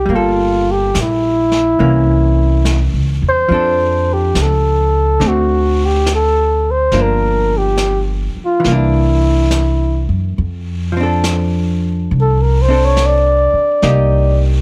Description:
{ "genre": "jazz ballad", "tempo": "70 BPM", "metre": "4/4", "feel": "swing 67% on 8ths", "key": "F major", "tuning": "A4 = 439 Hz", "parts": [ { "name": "mellow flugelhorn", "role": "melody", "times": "0.0-14.4 s", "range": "E4 to D5", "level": "-17 LUFS", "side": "equal", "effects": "plate reverb" }, { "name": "hollow-body jazz guitar", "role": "accompaniment", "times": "0.0-14.6 s", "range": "D3 to A4", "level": "-23 LUFS", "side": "equal", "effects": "none" }, { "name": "upright bass", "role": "bass", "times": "0.0-14.6 s", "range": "G1 to Gb2", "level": "-17 LUFS", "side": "equal", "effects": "none" }, { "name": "jazz brush drum kit", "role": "drums", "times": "0.1-14.6 s", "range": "brushed snare drum, hi-hat, snare drum", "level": "-28 LUFS", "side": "equal", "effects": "none" } ], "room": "light reverb", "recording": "none", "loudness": "-14 LUFS", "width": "mono", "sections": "0.0-10.4 A section; 10.4-14.6 B section", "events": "flugelhorn solo 10.4-14.6", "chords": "0.1 Gmadd9; 1.8 C7b9; 3.5 F6; 5.2 D5; 6.9 Gm7; 8.6 C9; 10.4 F6; 13.8 Cm7" }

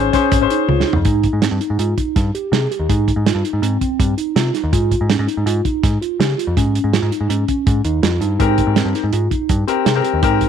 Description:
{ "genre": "progressive instrumental, band music in an uneven meter", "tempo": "163 BPM", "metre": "5/4", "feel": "straight", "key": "Ab major", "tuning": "A4 = 440 Hz", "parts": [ { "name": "clear concert grand piano", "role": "accompaniment", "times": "0.0-1.0, 8.4-10.5 s", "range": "C4 to C5", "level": "-18 LUFS", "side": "left 13 dB", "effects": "none" }, { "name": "mellow tine electric piano", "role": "arpeggios", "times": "0.0-10.5 s", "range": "C4 to Ab4", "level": "-20 LUFS", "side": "right 1 dB", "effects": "medium stereo tremolo" }, { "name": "deep dub picked electric bass", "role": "bass", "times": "0.0-10.4 s", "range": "Ab1 to Db3", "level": "-19 LUFS", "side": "equal", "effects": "none" }, { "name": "warm soul drum kit", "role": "drums", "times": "0.1-10.5 s", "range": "hi-hat, kick drum, snare drum, toms", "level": "-19 LUFS", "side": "right 3 dB", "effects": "none" } ], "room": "light reverb, small room ambience", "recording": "1960s-style stereo", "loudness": "-15 LUFS", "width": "side -8 dB against mid", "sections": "0.0-1.1 A section; 1.1-10.5 B section", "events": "drum fill 0.7-1.1", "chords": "0.0 Abadd11; 1.1 Abmaj7; 4.7 Eb9sus4; 8.4 Abmaj7" }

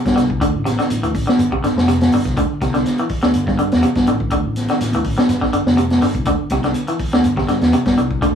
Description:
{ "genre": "afrobeat", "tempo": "123 BPM", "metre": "4/4", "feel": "straight", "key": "unclear", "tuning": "A4 = 440 Hz", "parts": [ { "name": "clean electric guitar", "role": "arpeggios", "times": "0.0-8.3 s", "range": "G2 to E3", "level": "-20 LUFS", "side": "left 1 dB", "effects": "none" }, { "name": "fingered electric bass", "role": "bass", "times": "0.1-8.3 s", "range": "F1 to G2", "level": "-22 LUFS", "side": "equal", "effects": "none" }, { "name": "vintage drum kit", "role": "drums", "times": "0.1-8.3 s", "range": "hi-hat, kick drum, snare drum", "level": "-17 LUFS", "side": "equal", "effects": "none" } ], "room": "moderate studio reverb, RT60 0.5 s", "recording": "rough rehearsal-room recording, small room ambience", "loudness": "-14 LUFS", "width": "side -8 dB against mid", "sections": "0.0-8.3 A section", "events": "none", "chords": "0.4 Dsus2; 1.4 G7sus4; 2.4 Dsus2; 3.3 Gsus4; 4.3 Dsus2; 5.3 G7sus4; 6.3 Dsus2; 7.2 Gsus4" }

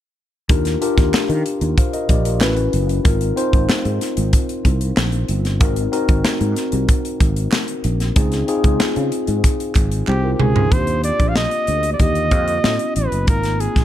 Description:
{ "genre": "polished 1980s jazz-funk pop", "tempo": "94 BPM", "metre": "4/4", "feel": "straight", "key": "Eb major", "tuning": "A4 = 440 Hz", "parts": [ { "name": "mellow tine electric piano", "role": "accompaniment", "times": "0.5-13.8 s", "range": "D3 to F5", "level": "-22 LUFS", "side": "left 3 dB", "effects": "wide subtle chorus" }, { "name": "sustaining fretless electric bass", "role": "bass", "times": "0.5-13.8 s", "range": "F#1 to Eb3", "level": "-20 LUFS", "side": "equal", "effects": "ensemble chorus" }, { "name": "crisp fusion drum kit", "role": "drums", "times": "0.5-13.8 s", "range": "hi-hat, kick drum, snare drum, toms", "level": "-18 LUFS", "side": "equal", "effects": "none" }, { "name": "group handclap", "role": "percussion", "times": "1.1-10.2 s", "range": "none", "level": "-31 LUFS", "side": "right 5 dB", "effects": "none" }, { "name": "warm flugelhorn", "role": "melody", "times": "10.1-13.8 s", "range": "G4 to F5", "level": "-21 LUFS", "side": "right 1 dB", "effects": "ping-pong delay" } ], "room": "small room ambience", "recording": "dark, warm production", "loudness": "-15 LUFS", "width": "side -12 dB against mid", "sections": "0.5-10.7 A section; 10.7-13.8 B section", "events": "drum fill 10.1-10.7", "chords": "0.5 Ebmaj7; 2.4 A69; 3.0 Ab69; 5.6 Ab7; 8.2 Dbmaj7; 10.7 Ebmaj7; 12.6 A69; 13.3 Ab69" }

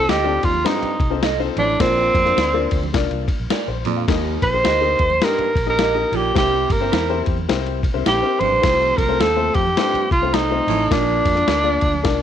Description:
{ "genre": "uptempo 1960s-style soul", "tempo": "105 BPM", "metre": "4/4", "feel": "swing 60% on 8ths", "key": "unclear", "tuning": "A4 = 438 Hz", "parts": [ { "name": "breathy tenor saxophone", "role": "melody", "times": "0.0-12.2 s", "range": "C4 to C5", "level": "-18 LUFS", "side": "right 1 dB", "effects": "none" }, { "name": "warm upright piano", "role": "accompaniment", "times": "0.0-12.2 s", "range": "Bb2 to F5", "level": "-25 LUFS", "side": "left 11 dB", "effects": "none" }, { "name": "vintage muted fingered electric bass", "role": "bass", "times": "0.0-12.2 s", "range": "G1 to Bb2", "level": "-25 LUFS", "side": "right 1 dB", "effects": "none" }, { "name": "electric guitar through a small old amp", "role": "stabs", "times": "0.1-11.6 s", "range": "E4 to Eb5", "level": "-27 LUFS", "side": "right 15 dB", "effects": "none" }, { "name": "lo-fi sampler-style drum kit", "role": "drums", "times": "0.1-12.2 s", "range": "kick drum, ride cymbal, snare drum", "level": "-23 LUFS", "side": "left 2 dB", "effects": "none" }, { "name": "congas", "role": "percussion", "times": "0.1-12.2 s", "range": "none", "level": "-35 LUFS", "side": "right 12 dB", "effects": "none" }, { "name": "warm baritone saxophone", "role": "riff", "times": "0.7-11.3 s", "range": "Eb2 to C3", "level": "-27 LUFS", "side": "right 13 dB", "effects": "none" } ], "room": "light reverb, small room ambience", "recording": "1960s-style stereo with parts hard left and right", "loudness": "-16 LUFS", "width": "side -9 dB against mid", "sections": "0.0-12.2 A section", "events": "none", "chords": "0.0 F7; 1.8 Bb; 4.1 Eb; 6.4 C7; 8.6 F/C; 10.9 Bb" }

